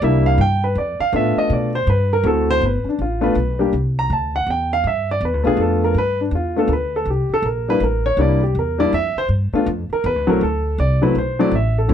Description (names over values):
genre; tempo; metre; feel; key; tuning
jazz piano trio; 162 BPM; 3/4; swing 64% on 8ths; G mixolydian; A4 = 440 Hz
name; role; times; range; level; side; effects
warm grand piano; melody; 0.0-11.9 s; F#3 to Bb5; -18 LUFS; equal; none
upright bass; bass; 0.0-11.9 s; G1 to B2; -20 LUFS; equal; none
room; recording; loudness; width
little or no reverb; close, detailed microphones; -16 LUFS; side -9 dB against mid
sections
0.0-2.6 A section; 2.6-11.9 A section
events
grand piano solo 0.0-11.9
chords
0.4 G7; 2.2 D7; 2.6 G7; 3.7 C; 4.8 G7; 7.1 C7; 9.3 G7; 10.4 D7(no3)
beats
0.02 | 0.39 0.76 1.13 | 1.50 1.87 2.24 | 2.61 2.98 3.35 | 3.73 4.10 4.47 | 4.84 5.21 5.58 | 5.95 6.32 6.69 | 7.07 7.44 7.81 | 8.18 8.55 8.92 | 9.29 9.66 10.04 | 10.41 10.78 11.15 | 11.52 11.89